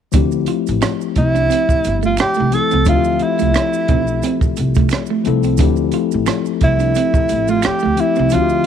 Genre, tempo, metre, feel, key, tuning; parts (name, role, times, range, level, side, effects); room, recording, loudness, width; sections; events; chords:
R&B, neo-soul; 88 BPM; 4/4; swing 55% on 16ths; D minor; A4 = 436 Hz
clean electric guitar; second line; 0.1-8.5 s; A3 to F4; -23 LUFS; right 14 dB
mellow tine electric piano; accompaniment; 0.1-8.7 s; F3 to E5; -20 LUFS; left 14 dB; slow stereo tremolo
upright bass; bass; 0.1-8.6 s; G1 to D2; -19 LUFS; equal
compact cocktail drum kit; drums; 0.1-8.7 s; hi-hat, kick drum, rim click; -18 LUFS; right 2 dB
maracas and finger snaps; percussion; 0.1-8.6 s; -33 LUFS; right 14 dB
breathy tenor saxophone; melody; 1.2-8.7 s; E4 to A4; -17 LUFS; right 2 dB
studio reverb; 1960s-style stereo with parts hard left and right; -14 LUFS; side -8 dB against mid
0.1-8.7 A section
kick muted 8.3-8.7
0.1 Dm11